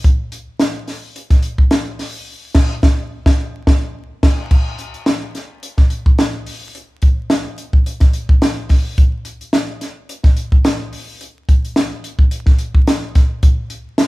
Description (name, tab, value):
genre	funk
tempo	108 BPM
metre	4/4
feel	straight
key	none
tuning	none
part	compact cocktail drum kit	drums	0.0-14.1 s	crash cymbal, hi-hat, kick drum, snare drum	-13 LUFS	equal	none
part	tambourine	percussion	14.0-14.1 s	none	-34 LUFS	left 2 dB	none
room	little or no reverb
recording	band playing live in one room, vinyl crackle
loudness	-13 LUFS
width	side -20 dB against mid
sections	0.0-4.5 A section; 4.5-14.1 B section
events	band accent 2.3-4.5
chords	none